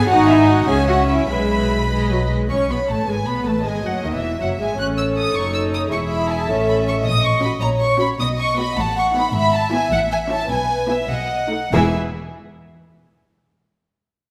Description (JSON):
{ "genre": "quick classical-period movement for string orchestra", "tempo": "93-107 BPM (dotted quarters)", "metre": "6/8", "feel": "straight", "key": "E major", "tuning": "A4 = 440 Hz", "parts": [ { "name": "warm studio violin section", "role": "second line", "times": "0.0-11.9 s", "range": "G#4 to B5", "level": "-25 LUFS", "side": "equal", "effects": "none" }, { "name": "rich studio viola section", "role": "accompaniment", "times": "0.0-11.9 s", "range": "D#3 to A4", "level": "-23 LUFS", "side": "equal", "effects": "none" }, { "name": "warm symphonic cello section", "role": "bass", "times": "0.0-11.9 s", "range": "D#2 to B4", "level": "-30 LUFS", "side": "equal", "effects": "none" }, { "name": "warm symphonic violin section", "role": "melody", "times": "0.1-11.9 s", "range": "D#5 to F#6", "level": "-26 LUFS", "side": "equal", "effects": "none" }, { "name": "dark symphonic double bass section", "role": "bass", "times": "0.1-11.9 s", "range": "E1 to D#2", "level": "-25 LUFS", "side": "equal", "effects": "none" } ], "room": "wet scoring stage reverb, RT60 1.7 s", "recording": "none", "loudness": "-19 LUFS", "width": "mono", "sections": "0.0-2.5 A section; 2.5-11.7 B section; 11.7-12.9 C section", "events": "none", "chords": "0.1 G#5; 0.7 C#m; 1.3 E/B; 1.9 B; 2.5 Amaj9; 3.6 Emaj9; 4.2 E; 4.8 A; 5.9 E; 6.5 A; 7.0 F#/A#; 8.2 B; 8.8 B7/A; 9.3 E/G#; 9.9 A; 10.5 E/B; 11.1 B7; 11.7 N.C." }